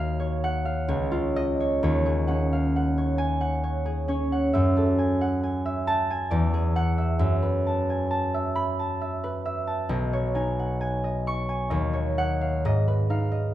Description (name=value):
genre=classical, solo harp piece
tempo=66 BPM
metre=3/4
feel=rubato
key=Eb minor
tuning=A4 = 440 Hz
part: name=concert harp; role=solo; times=0.0-13.5 s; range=B1 to C#6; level=-23 LUFS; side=equal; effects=none
room=light reverb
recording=dark, warm production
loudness=-23 LUFS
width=side -13 dB against mid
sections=0.0-13.5 A section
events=none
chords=0.0 Ebm9; 0.9 Dbadd9; 1.8 Ebm11; 4.5 Gbm9; 6.3 E9; 7.2 Gbm11; 9.9 B69; 11.7 Ebm7; 12.6 Abm6